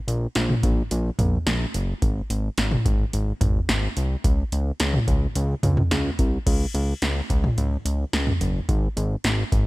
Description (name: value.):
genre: synth-pop.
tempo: 108 BPM.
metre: 4/4.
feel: straight.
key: unclear.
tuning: A4 = 443 Hz.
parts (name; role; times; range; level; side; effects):
fat analog bass; bass; 0.1-9.7 s; Gb1 to Db2; -23 LUFS; equal; none.
electro analog drum machine; drums; 0.1-9.7 s; crash cymbal, hi-hat, kick drum, snare drum, toms; -23 LUFS; equal; none.
room: little or no reverb.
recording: none.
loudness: -21 LUFS.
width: side -20 dB against mid.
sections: 0.0-6.5 A section; 6.5-9.7 B section.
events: none.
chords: none.